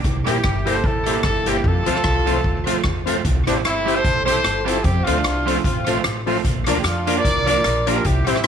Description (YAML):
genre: ska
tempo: 150 BPM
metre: 4/4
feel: swing 56% on 8ths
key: F major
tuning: A4 = 440 Hz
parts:
  - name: upright bass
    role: bass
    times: 0.0-8.4 s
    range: G1 to F2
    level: -24 LUFS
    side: equal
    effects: none
  - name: street-band drum kit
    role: drums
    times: 0.0-8.5 s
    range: hi-hat, kick drum, rim click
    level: -23 LUFS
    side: equal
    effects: tape echo
  - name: warm horn section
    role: melody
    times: 0.3-8.5 s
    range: Bb3 to D5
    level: -22 LUFS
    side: equal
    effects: none
  - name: electric guitar at the edge of break-up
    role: accompaniment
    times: 0.3-8.4 s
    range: F3 to G4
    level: -25 LUFS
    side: right 10 dB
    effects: tape echo
  - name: tonewheel organ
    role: stabs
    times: 0.3-8.4 s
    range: C4 to D5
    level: -26 LUFS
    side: left 12 dB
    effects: slow rotary speaker
room: moderate echo chamber reverb, RT60 1.3 s, small room ambience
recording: 1960s-style stereo with parts hard left and right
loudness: -17 LUFS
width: side -8 dB against mid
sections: 0.0-3.2 A section; 3.2-8.5 B section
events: none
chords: 0.0 C7; 1.6 F; 3.2 C; 4.8 F; 6.4 Bb